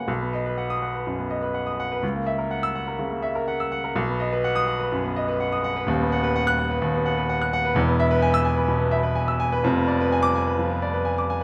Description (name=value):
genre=classical, virtuoso piano study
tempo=126 BPM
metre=4/4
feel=rubato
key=unclear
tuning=A4 = 437 Hz
part: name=warm baby grand piano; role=solo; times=0.0-11.4 s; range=D#1 to F#6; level=-24 LUFS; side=equal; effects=none
room=light reverb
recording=none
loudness=-24 LUFS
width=mono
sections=0.1-11.4 A section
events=none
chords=0.1 B; 2.0 F#7/C#; 4.0 B; 5.9 B/D#; 7.8 E; 9.6 Fdim7